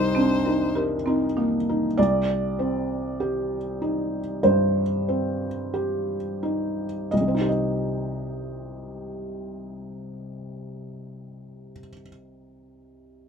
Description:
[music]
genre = neoclassical piano and strings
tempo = 42-50 BPM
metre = 4/4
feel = rubato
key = C minor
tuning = A4 = 439 Hz
[part]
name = bright violin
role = melody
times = 0.0-0.8 s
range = C5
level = -29 LUFS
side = left 5 dB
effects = none
[part]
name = felt-muted upright piano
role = accompaniment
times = 0.0-13.3 s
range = C2 to Eb5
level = -24 LUFS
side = equal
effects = none
[part]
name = buzzing marimba with hard mallets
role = arpeggios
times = 0.0-1.6 s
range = C4 to Bb4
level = -28 LUFS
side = right 1 dB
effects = none
[sound]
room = light reverb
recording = minimal, uncompressed stereo recording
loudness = -22 LUFS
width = side -6 dB against mid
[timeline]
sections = 0.0-2.0 A section; 2.0-7.1 B section; 7.1-12.7 C section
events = slowing down 0.0-7.1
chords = 0.0 Cm7; 2.0 Cm

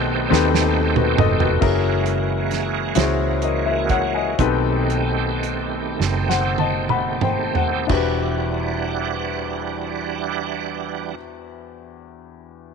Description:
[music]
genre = slow gospel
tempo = 28-46 BPM (dotted quarters)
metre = 6/8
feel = straight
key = E minor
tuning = A4 = 440 Hz
[part]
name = warm upright piano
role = accompaniment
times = 0.0-12.7 s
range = E2 to B5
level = -22 LUFS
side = left 10 dB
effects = none
[part]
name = bright tonewheel organ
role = sustained chords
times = 0.0-11.2 s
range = D#3 to F#5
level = -25 LUFS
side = right 14 dB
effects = slow rotary speaker, chorus vibrato
[part]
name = vintage muted fingered electric bass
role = bass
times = 0.0-11.2 s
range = E1 to D#2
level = -24 LUFS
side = right 3 dB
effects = none
[part]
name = warm soul drum kit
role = drums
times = 0.3-8.2 s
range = crash cymbal, hi-hat, kick drum, snare drum, toms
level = -23 LUFS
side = right 7 dB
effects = none
[sound]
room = light reverb, studio ambience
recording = 1960s-style stereo with parts hard left and right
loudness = -18 LUFS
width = side -6 dB against mid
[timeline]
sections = 0.0-1.6 A section; 1.6-7.9 B section; 7.9-12.1 C section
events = drum fill 0.3-1.6, 6.0-7.9; slowing down 1.6-7.9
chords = 0.0 B7b9b13; 1.6 F#9; 4.4 B7b9b13; 7.9 Em9

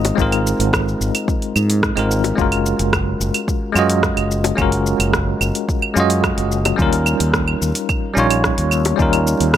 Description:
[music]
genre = sunset chillout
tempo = 109 BPM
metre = 4/4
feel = straight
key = unclear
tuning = A4 = 440 Hz
[part]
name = bell-like tine electric piano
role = accompaniment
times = 0.0-9.6 s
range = G3 to Eb5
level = -18 LUFS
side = moving between left 5 dB and right 4 dB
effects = fast stereo tremolo, auto-pan, low-pass filter, tape echo
[part]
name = mellow fretless electric bass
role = bass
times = 0.0-9.6 s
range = Gb1 to Ab2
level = -19 LUFS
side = equal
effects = none
[part]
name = deep house drum kit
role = drums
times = 0.0-9.6 s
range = claves, hi-hat, rim click, shaker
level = -22 LUFS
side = right 1 dB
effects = none
[part]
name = bongos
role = percussion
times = 0.0-9.0 s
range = none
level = -23 LUFS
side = left 6 dB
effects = none
[part]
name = electronic kick drum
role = drums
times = 0.2-9.6 s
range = none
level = -22 LUFS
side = equal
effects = none
[sound]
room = light reverb, digital ambience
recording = none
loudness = -15 LUFS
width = side -11 dB against mid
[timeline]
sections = 0.0-9.6 A section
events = none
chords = 0.0 Ab69; 2.4 Gbmaj9; 6.8 Eb7

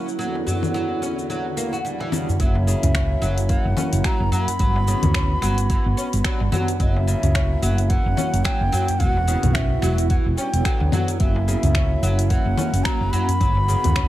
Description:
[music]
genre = organic downtempo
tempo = 109 BPM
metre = 4/4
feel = swing 58% on 16ths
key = F# phrygian dominant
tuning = A4 = 441 Hz
[part]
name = pedal harmonium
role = accompaniment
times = 0.0-14.1 s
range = E2 to F#4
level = -30 LUFS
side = equal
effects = sidechain pumping, tape echo
[part]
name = granular cloud pad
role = sustained chords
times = 0.0-14.1 s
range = D3 to B5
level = -30 LUFS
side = right 3 dB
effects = built-in reverb, sidechain pumping
[part]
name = oud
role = arpeggios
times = 0.0-14.1 s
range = C#3 to F#4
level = -30 LUFS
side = equal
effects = tape echo
[part]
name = afro-pop drum kit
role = drums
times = 0.1-14.1 s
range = congas, finger snaps, hi-hat, shaker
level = -28 LUFS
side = left 4 dB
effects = none
[part]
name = darbuka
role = percussion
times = 0.4-13.9 s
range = none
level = -26 LUFS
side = equal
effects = none
[part]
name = breathy bansuri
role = melody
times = 2.4-14.1 s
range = E5 to B5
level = -27 LUFS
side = equal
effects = ping-pong delay
[part]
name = woody fretless electric bass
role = bass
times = 2.4-14.1 s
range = E1 to D2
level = -20 LUFS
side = equal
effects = sidechain pumping
[part]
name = electronic kick drum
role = drums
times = 2.4-14.1 s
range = none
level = -22 LUFS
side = equal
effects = none
[sound]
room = light reverb, small room reverb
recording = none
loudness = -18 LUFS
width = side -14 dB against mid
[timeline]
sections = 0.0-2.4 A section; 2.4-14.1 B section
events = filter sweep on drum 0.0-2.4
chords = 0.2 Em7; 2.4 F#7; 4.6 Gmaj7; 6.8 F#7; 9.0 Em7; 11.2 F#7; 13.4 Gmaj7

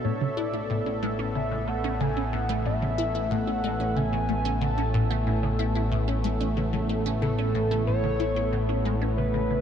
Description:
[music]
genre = ambient, sequencer-driven space music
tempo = 92 BPM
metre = 4/4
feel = straight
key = unclear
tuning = A4 = 439 Hz
[part]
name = pulse-width lead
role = melody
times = 0.0-9.6 s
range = A4 to A5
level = -32 LUFS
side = equal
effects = chorus, analog delay
[part]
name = sweeping resonant pad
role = sustained chords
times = 0.0-9.6 s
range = A2 to E5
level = -29 LUFS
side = left 1 dB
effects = chorus
[part]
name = resonant blip pluck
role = riff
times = 0.0-9.6 s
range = A2 to E4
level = -30 LUFS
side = left 1 dB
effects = phaser, wide subtle chorus, analog delay
[part]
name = fat analog bass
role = bass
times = 0.0-9.6 s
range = A1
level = -29 LUFS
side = equal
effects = none
[sound]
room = moderate huge ambient reverb, RT60 8.5 s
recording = dark, warm production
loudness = -24 LUFS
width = side -8 dB against mid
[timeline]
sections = 0.0-9.6 A section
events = none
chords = 0.0 A

